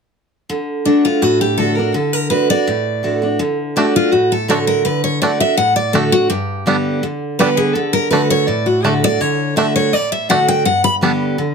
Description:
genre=bluegrass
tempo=166 BPM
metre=4/4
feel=straight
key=D major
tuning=A4 = 439 Hz
part: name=picked steel-string acoustic guitar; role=accompaniment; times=0.5-11.5 s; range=G2 to G4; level=-17 LUFS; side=right 1 dB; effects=none
part: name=picked steel-string acoustic guitar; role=melody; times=0.9-10.9 s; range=D4 to B5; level=-16 LUFS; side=left 1 dB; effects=none
part: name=bluegrass banjo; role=melody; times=3.8-11.1 s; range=G3 to D4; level=-18 LUFS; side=right 3 dB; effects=none
room=light reverb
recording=close, detailed microphones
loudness=-13 LUFS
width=side -5 dB against mid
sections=0.5-3.4 A section; 3.4-11.5 B section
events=none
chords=0.5 D; 6.3 G; 7.8 D; 10.7 G

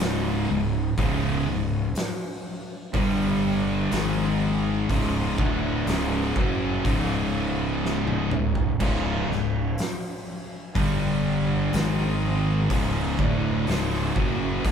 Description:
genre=stoner and doom metal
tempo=62 BPM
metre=4/4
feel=straight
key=unclear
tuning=A4 = 440 Hz
part: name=thick fuzz guitar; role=riff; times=0.0-14.7 s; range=C#2 to G#3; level=-26 LUFS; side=left 5 dB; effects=distortion
part: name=thick fuzz guitar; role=riff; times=0.0-14.7 s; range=C#2 to G#3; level=-29 LUFS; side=right 8 dB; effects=distortion
part: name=tight distorted guitar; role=riff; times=0.0-14.7 s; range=C#2 to G#3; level=-31 LUFS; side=right 2 dB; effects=distortion
part: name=fuzz fingered electric bass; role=bass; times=0.0-14.7 s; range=C#1 to G#1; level=-30 LUFS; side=right 1 dB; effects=overdrive
part: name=oversized low-tuned drum kit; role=drums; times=0.0-14.7 s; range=crash cymbal, hi-hat, kick drum, snare drum, toms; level=-29 LUFS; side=equal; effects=none
room=moderate large studio reverb, RT60 0.9 s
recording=band playing live in one room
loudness=-22 LUFS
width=side -7 dB against mid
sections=0.0-14.7 A section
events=drum fill 7.8-8.8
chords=0.0 C#5; 2.9 G5; 3.9 G#5; 4.9 C#5; 10.8 G5; 11.7 G#5; 12.7 C#5

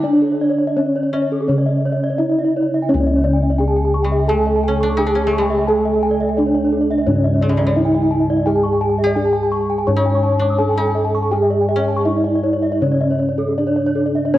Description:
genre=Balinese gamelan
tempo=77-86 BPM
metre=4/4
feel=straight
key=C# pelog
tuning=A4 = 440 Hz
part: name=gamelan-type bronze metallophone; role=melody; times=0.0-14.4 s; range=C#4 to C#5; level=-18 LUFS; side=equal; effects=cassette tape
part: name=koto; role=second line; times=0.0-14.3 s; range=E3-50c to G#4-45c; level=-27 LUFS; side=left 3 dB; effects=cassette tape
part: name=gamelan-type bronze metallophone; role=accompaniment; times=0.0-14.4 s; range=C#3 to C#4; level=-25 LUFS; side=right 2 dB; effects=cassette tape
part: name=gamelan-type bronze metallophone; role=arpeggios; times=0.0-14.4 s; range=G#4-45c to E6-50c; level=-24 LUFS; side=left 4 dB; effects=cassette tape
part: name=gamelan-type bronze metallophone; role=arpeggios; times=0.0-14.3 s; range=G#4-45c to D6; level=-26 LUFS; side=right 3 dB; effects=cassette tape
part: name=gamelan-type bossed gongs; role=bass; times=0.0-14.4 s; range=C#2 to A4-40c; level=-20 LUFS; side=equal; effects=none
room=light reverb, small room ambience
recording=home recording on cassette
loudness=-15 LUFS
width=side -14 dB against mid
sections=0.0-2.9 A section; 2.9-14.4 B section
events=none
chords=none

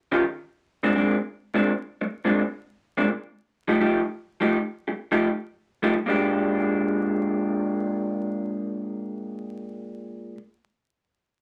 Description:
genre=blues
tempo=84 BPM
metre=4/4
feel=swing 66% on 8ths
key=Bb mixolydian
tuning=A4 = 439 Hz
part: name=electric guitar through a small old amp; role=solo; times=0.1-10.4 s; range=Bb2 to G4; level=-25 LUFS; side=equal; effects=none
room=moderate studio reverb, RT60 0.5 s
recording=vinyl crackle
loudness=-25 LUFS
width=mono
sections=0.0-6.1 A section; 6.1-8.9 B section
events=none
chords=0.4 Bb9; 3.2 F9; 6.1 Bb6

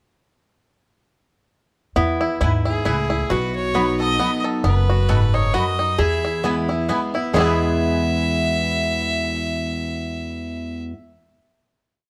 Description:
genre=bluegrass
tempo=133 BPM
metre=3/4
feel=swing 55% on 8ths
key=E major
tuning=A4 = 440 Hz
part: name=lap resonator guitar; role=second line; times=2.0-10.9 s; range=E4 to G#4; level=-29 LUFS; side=equal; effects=none
part: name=picked steel-string acoustic guitar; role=accompaniment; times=2.0-10.9 s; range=E2 to F#4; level=-26 LUFS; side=equal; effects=none
part: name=bluegrass banjo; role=arpeggios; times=2.0-10.9 s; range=G#3 to A4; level=-27 LUFS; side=equal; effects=none
part: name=upright bass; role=bass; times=2.0-10.9 s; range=F#1 to E2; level=-26 LUFS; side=equal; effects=none
part: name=mandolin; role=stabs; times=2.4-10.9 s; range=B3 to B5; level=-32 LUFS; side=equal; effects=none
part: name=clear fiddle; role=melody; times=2.7-10.8 s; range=G#4 to E5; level=-28 LUFS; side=equal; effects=plate reverb
room=light reverb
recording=dark, warm production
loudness=-21 LUFS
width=mono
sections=2.0-7.3 A section; 7.3-10.0 final chord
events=none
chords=2.0 E; 3.3 B; 6.0 E

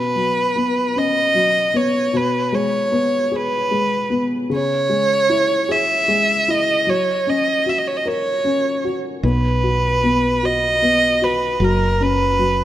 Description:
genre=six-eight pop ballad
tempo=51 BPM (dotted quarters)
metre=6/8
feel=straight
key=B major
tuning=A4 = 440 Hz
part: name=warm violin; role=melody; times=0.0-12.6 s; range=A#4 to E5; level=-17 LUFS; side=right 1 dB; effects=none
part: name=dark upright piano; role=accompaniment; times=0.0-12.6 s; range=B2 to A#4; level=-22 LUFS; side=left 2 dB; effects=none
part: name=woody fretless electric bass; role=bass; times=9.2-12.6 s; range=F#1 to B1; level=-21 LUFS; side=right 1 dB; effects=none
room=light reverb, small room ambience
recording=rough home demo mix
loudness=-16 LUFS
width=side -12 dB against mid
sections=0.0-12.6 A section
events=none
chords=0.0 Bsus2; 2.1 G#madd11/B; 4.5 C#m; 6.9 F#; 9.2 B; 11.6 F#

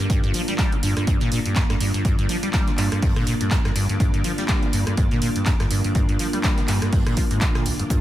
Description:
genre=acid house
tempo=123 BPM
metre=4/4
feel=swing 57% on 16ths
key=G minor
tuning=A4 = 440 Hz
part: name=string machine, full ensemble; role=sustained chords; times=0.0-8.0 s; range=Bb3 to G5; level=-27 LUFS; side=equal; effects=ensemble chorus, sidechain pumping
part: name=acid bass, saw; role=riff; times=0.0-8.0 s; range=G1 to G3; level=-24 LUFS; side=equal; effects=overdrive, lush chorus, sidechain pumping, analog delay
part: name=electronic kick drum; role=drums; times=0.1-8.0 s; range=none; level=-22 LUFS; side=equal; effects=none
part: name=jazz brush drum kit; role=drums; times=0.1-8.0 s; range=hi-hat, snare drum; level=-39 LUFS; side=right 3 dB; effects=high-pass filter on hats, high-pass filter on snare, high-pass filter on room
part: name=punchy analog drum machine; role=drums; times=0.1-8.0 s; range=handclaps, hi-hat, rim click, shaker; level=-29 LUFS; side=equal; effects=none
room=light reverb, small room ambience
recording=none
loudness=-19 LUFS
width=side -13 dB against mid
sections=0.0-8.0 A section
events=filter sweep on acid bass 0.0-8.0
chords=0.0 Gm

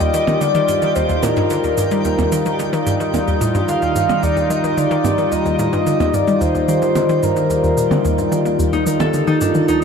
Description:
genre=ambient, sequencer-driven space music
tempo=110 BPM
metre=4/4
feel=straight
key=Eb lydian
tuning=A4 = 440 Hz
part: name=breathy flute-like synth lead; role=melody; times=0.0-8.3 s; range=Bb4 to F5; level=-20 LUFS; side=equal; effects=lush chorus, analog delay
part: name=sweeping resonant pad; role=sustained chords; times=0.0-9.8 s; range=Eb3 to F4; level=-19 LUFS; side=left 1 dB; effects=chorus, phaser
part: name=hollow square pluck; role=riff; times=0.0-9.8 s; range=Eb2 to Bb3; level=-20 LUFS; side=equal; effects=chorus, analog delay
part: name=shaker and percussion blips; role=percussion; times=0.0-9.8 s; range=none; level=-28 LUFS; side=right 4 dB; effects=analog delay
part: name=twinkling granular texture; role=texture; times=0.0-9.8 s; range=G4 to A5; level=-30 LUFS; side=left 1 dB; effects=built-in reverb
part: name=concert harp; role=arpeggios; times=8.7-9.8 s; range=D4 to A4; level=-18 LUFS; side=left 1 dB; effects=auto-pan, analog delay
room=wet huge ambient reverb, RT60 7.5 s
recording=dark, warm production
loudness=-14 LUFS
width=side -6 dB against mid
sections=0.0-9.8 A section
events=none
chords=0.0 Ebadd9

